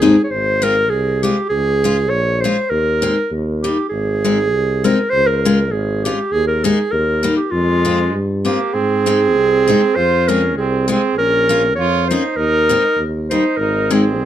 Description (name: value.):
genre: alpine folk, alpine dance band.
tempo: 100 BPM.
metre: 2/4.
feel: swing 54% on 8ths.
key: Ab major.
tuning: A4 = 440 Hz.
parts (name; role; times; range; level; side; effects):
warm clarinet; melody; 0.0-14.3 s; F4 to Db5; -16 LUFS; right 1 dB; plate reverb.
picked steel-string acoustic guitar; accompaniment; 0.0-14.0 s; G3 to F4; -17 LUFS; left 3 dB; none.
mellow tuba; bass; 0.0-14.3 s; Ab1 to Ab2; -20 LUFS; equal; none.
warm trumpet; second line; 7.5-14.3 s; Ab3 to F4; -21 LUFS; right 5 dB; none.
room: moderate studio ambience, RT60 0.5 s.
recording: dark, warm production.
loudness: -14 LUFS.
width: side -11 dB against mid.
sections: 0.0-14.3 A section.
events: none.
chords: 0.3 Fm/Ab; 1.5 Db; 2.7 Ab/Eb; 3.3 Eb; 3.9 Ab; 5.1 Db; 6.3 Ebsus4; 6.9 Eb; 7.5 Fm; 8.7 Ab; 10.0 Fm; 11.2 Bbm; 12.4 Ab/Eb; 13.0 Eb; 13.6 Ab.